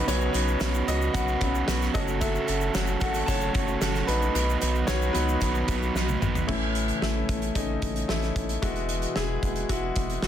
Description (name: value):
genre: piano-driven pop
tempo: 112 BPM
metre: 4/4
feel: straight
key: B mixolydian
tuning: A4 = 440 Hz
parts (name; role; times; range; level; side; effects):
- clear concert grand piano; accompaniment; 0.0-10.3 s; A2 to A5; -29 LUFS; left 2 dB; plate reverb
- warm analog pad; sustained chords; 0.0-10.3 s; C#3 to F#4; -37 LUFS; right 1 dB; none
- crunchy overdriven guitar; riff; 0.0-6.5 s; B2 to B4; -29 LUFS; right 6 dB; none
- saturated sub bass; bass; 0.0-10.3 s; E1 to C#2; -29 LUFS; equal; none
- loose indie drum kit; drums; 0.1-10.3 s; crash cymbal, hi-hat, kick drum, snare drum, toms; -30 LUFS; equal; none
- tube shaker; percussion; 0.1-6.5 s; none; -44 LUFS; left 10 dB; none
room: light reverb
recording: dense, heavily limited modern master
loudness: -24 LUFS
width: side -10 dB against mid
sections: 0.0-6.5 A section; 6.5-10.3 B section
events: grand piano solo 0.0-6.5; drum fill 6.0-6.5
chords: 0.0 Bsus2; 1.9 F#m; 4.3 B; 6.5 A; 8.6 Eadd9